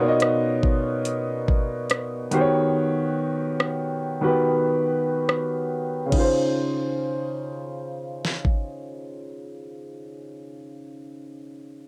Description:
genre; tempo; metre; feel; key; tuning
contemporary R&B; 71 BPM; 4/4; straight; Db major; A4 = 440 Hz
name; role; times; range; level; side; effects
warm concert grand piano; accompaniment; 0.0-11.9 s; Cb3 to Eb5; -26 LUFS; equal; low-pass filter, cassette tape
smooth R&B drum kit; drums; 0.2-8.6 s; crash cymbal, hi-hat, kick drum, rim click, snare drum; -26 LUFS; equal; cassette tape
room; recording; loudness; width
little or no reverb; home recording on cassette; -24 LUFS; mono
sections
0.0-6.1 A section; 6.1-9.5 B section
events
filter sweep on grand piano 0.0-6.1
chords
0.0 Cbmaj9; 2.3 Eb7alt; 6.1 Dbmaj7

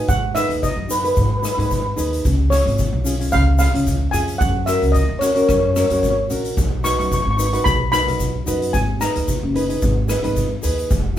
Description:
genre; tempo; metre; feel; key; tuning
calypso; 111 BPM; 4/4; swing 53% on 16ths; unclear; A4 = 440 Hz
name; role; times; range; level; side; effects
steel pan; melody; 0.0-10.6 s; B4 to C#6; -21 LUFS; equal; none
nylon-string guitar; accompaniment; 0.0-11.2 s; C#4 to B4; -23 LUFS; equal; none
upright bass; bass; 0.0-11.2 s; E1 to G#2; -21 LUFS; equal; none
street-band drum kit; drums; 0.1-11.0 s; hi-hat, kick drum, rim click; -23 LUFS; equal; none
egg shaker; percussion; 0.1-11.0 s; none; -33 LUFS; left 4 dB; none
room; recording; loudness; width
wet small room reverb, RT60 0.5 s; band playing live in one room; -16 LUFS; side -11 dB against mid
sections
0.0-11.2 A section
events
none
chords
0.1 G#m; 2.2 C#7; 4.4 F#; 6.6 B; 8.7 G#madd9

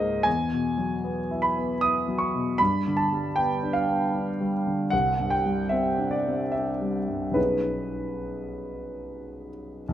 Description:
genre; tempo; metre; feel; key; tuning
classical, impressionist solo piano; 69-78 BPM; 3/4; rubato; unclear; A4 = 440 Hz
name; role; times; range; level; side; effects
clear grand piano; solo; 0.0-9.9 s; B1 to D#6; -24 LUFS; equal; none
room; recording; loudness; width
moderate recital hall reverb, RT60 1.6 s; close, detailed microphones; -23 LUFS; side -11 dB against mid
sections
0.0-9.9 A section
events
none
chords
0.3 Eadd9; 2.6 G7; 4.9 Cadd9; 7.4 B69

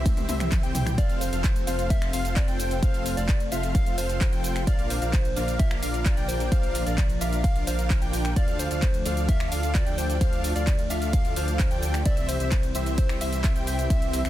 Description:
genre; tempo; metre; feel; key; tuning
EDM, festival progressive house; 130 BPM; 4/4; straight; F major; A4 = 440 Hz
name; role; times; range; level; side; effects
lush unison pad; sustained chords; 0.0-14.3 s; E3 to D4; -36 LUFS; equal; chorus, sidechain pumping
wide unison lead; arpeggios; 0.0-14.3 s; E5 to G5; -35 LUFS; equal; sidechain pumping, dub echo
dense compressed supersaw; riff; 0.0-14.3 s; C4 to G5; -33 LUFS; equal; sidechain pumping
wide detuned saw bass; bass; 0.0-14.3 s; F1 to D2; -29 LUFS; equal; chorus, sidechain pumping
big-room dance drum kit; drums; 0.1-14.3 s; finger snaps, handclaps, hi-hat, ride cymbal, shaker, toms; -33 LUFS; equal; none
electronic kick drum; drums; 0.1-14.0 s; none; -24 LUFS; equal; none
soft struck synth lead; melody; 1.0-14.3 s; C5 to F5; -34 LUFS; left 2 dB; chorus, dub echo
room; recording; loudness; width
digital ambience; dense, heavily limited modern master; -22 LUFS; side -13 dB against mid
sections
0.0-14.3 A section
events
drum fill 0.1-1.0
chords
0.0 C; 1.0 F; 4.7 Bb; 8.4 Dm; 12.1 C

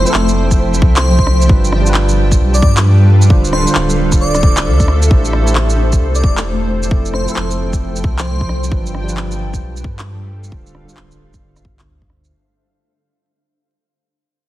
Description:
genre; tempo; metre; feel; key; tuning
future garage; 133 BPM; 4/4; swing 64% on 16ths; unclear; A4 = 441 Hz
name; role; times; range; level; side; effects
airy dreamy lead; melody; 0.0-8.6 s; C5 to D5; -23 LUFS; equal; chorus, dub echo
tine electric piano; accompaniment; 0.0-12.3 s; D3 to C5; -21 LUFS; right 2 dB; sidechain pumping, low-pass filter, dub echo
granular cloud pad; sustained chords; 0.0-12.3 s; F3 to A5; -21 LUFS; left 1 dB; built-in reverb, vintage 12-bit sampler grit, sidechain pumping
warm sub bass; bass; 0.0-12.3 s; D1 to G2; -14 LUFS; equal; sidechain pumping
electronic shaker, handclaps and rim click; drums; 0.1-12.3 s; none; -20 LUFS; equal; small room reverb
electronic kick drum; drums; 0.5-12.1 s; none; -13 LUFS; equal; small room reverb
room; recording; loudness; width
light reverb; dense, heavily limited modern master, vinyl crackle, faint mains hum; -11 LUFS; side -15 dB against mid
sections
0.0-5.1 A section; 5.1-12.3 B section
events
fade-out 5.1-12.3; filter sweep on tine electric piano 5.1-12.3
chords
0.0 Fmaj7; 1.5 G7; 3.3 Dm7; 5.1 Am7; 6.9 Fmaj7; 8.7 G7; 10.5 Dm7

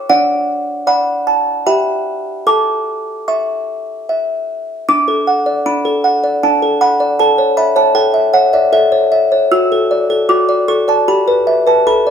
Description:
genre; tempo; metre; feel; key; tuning
classical, lullaby for music box; 77 BPM; 3/4; straight; D major; A4 = 436 Hz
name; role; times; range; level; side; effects
music box; solo; 0.0-12.1 s; D4 to E6; -12 LUFS; equal; none
room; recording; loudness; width
moderate large studio reverb, RT60 1.1 s; band playing live in one room; -11 LUFS; side -8 dB against mid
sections
0.0-4.9 A section; 4.9-12.1 B section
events
none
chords
0.1 D; 1.7 Em/G; 2.5 A; 4.9 D; 7.2 A; 9.5 D/F#; 11.1 Em/G

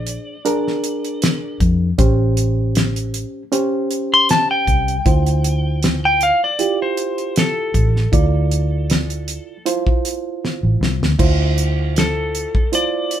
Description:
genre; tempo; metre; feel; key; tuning
straight-eighth soul blues; 78 BPM; 4/4; swing 53% on 16ths; D minor; A4 = 441 Hz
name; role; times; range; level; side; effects
clean lap steel guitar; melody; 0.0-13.2 s; A4 to B#5; -18 LUFS; left 1 dB; none
reed electric piano; accompaniment; 0.0-13.2 s; C#4 to D5; -23 LUFS; right 4 dB; none
vintage muted fingered electric bass; bass; 0.0-12.4 s; A1 to F2; -18 LUFS; equal; none
damped 70s drum kit; drums; 0.1-13.2 s; crash cymbal, hi-hat, kick drum, snare drum; -19 LUFS; equal; none
room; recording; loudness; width
moderate studio reverb, RT60 0.5 s; band playing live in one room; -15 LUFS; side -10 dB against mid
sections
0.0-11.2 A section; 11.2-13.2 B section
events
drum fill 10.4-11.2; electric slide guitar solo 11.2-13.2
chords
0.0 Bb7; 2.0 A7#9; 5.1 Dm7

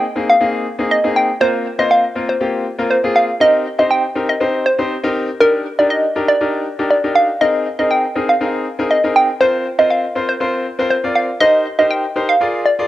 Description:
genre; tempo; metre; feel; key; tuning
pop; 120 BPM; 4/4; straight; unclear; A4 = 439 Hz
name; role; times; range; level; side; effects
hollow square pluck; melody; 0.0-12.8 s; Bb4 to G5; -14 LUFS; equal; chorus, cassette tape
clear concert grand piano; accompaniment; 0.0-12.9 s; Bb3 to D5; -19 LUFS; left 2 dB; cassette tape
room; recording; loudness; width
moderate spring reverb, RT60 1.6 s; home recording on cassette; -13 LUFS; side -14 dB against mid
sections
0.0-12.9 A section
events
none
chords
0.0 Abadd9; 1.4 Bbsus2; 3.4 Cm7; 5.4 Ebmaj7; 7.4 Abadd9; 9.4 Bbsus2; 11.4 Cm7

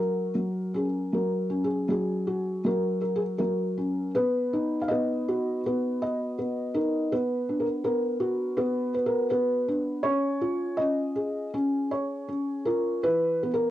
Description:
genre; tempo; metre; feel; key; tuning
children's music, lullaby; 80 BPM; 4/4; rubato; F# major; A4 = 440 Hz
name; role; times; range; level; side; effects
felt-muted upright piano; solo; 0.0-13.7 s; E3 to E#5; -25 LUFS; equal; cassette tape
room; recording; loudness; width
light reverb, small room ambience; home recording on cassette; -25 LUFS; side -13 dB against mid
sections
0.0-1.1 A section; 1.1-13.7 A section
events
none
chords
0.0 F#; 4.1 B; 7.1 Bm; 10.1 C#; 13.1 E5

